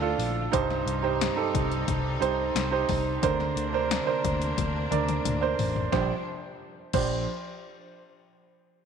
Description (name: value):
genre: piano-driven pop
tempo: 89 BPM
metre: 4/4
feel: straight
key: Bb major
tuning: A4 = 440 Hz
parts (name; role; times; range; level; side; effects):
- warm concert grand piano; accompaniment; 0.0-7.3 s; Bb1 to D5; -27 LUFS; right 6 dB; none
- bright studio string section; sustained chords; 0.0-6.2 s; C3 to F4; -37 LUFS; left 3 dB; none
- vintage muted picked electric bass; bass; 0.0-7.3 s; A1 to D2; -31 LUFS; left 2 dB; none
- punchy analog drum machine; drums; 0.2-7.1 s; crash cymbal, hi-hat, kick drum, snare drum, toms; -32 LUFS; left 7 dB; none
room: moderate echo chamber reverb, RT60 2.7 s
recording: 1960s-style stereo with parts hard left and right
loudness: -24 LUFS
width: side -7 dB against mid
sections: 0.0-5.9 A section; 5.9-8.6 B section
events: drum fill 4.6-5.9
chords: 0.0 Dm; 0.5 Cm; 3.2 Bbadd9/D; 5.9 Bb69